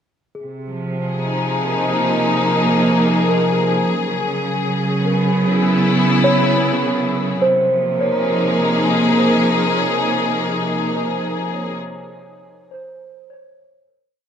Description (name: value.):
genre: ambient.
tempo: 51 BPM.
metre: 3/4.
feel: straight.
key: unclear.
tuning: A4 = 441 Hz.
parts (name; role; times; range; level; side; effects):
worn celesta; arpeggios; 0.3-13.5 s; Ab4 to Db5; -23 LUFS; equal; tape echo.
rich studio string section; sustained chords; 0.4-11.7 s; C3 to Ab4; -16 LUFS; equal; none.
room: wet spring reverb, RT60 2.8 s.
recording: echo-heavy mix.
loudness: -15 LUFS.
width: side -8 dB against mid.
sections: 0.4-7.4 A section; 7.4-10.9 final chord.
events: fade-in on celesta 0.4-7.4.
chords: 0.4 Ab; 3.9 E; 7.4 Ab.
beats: | 0.36 1.54 2.71 | 3.89 5.07 6.24 | 7.42 8.60 9.77.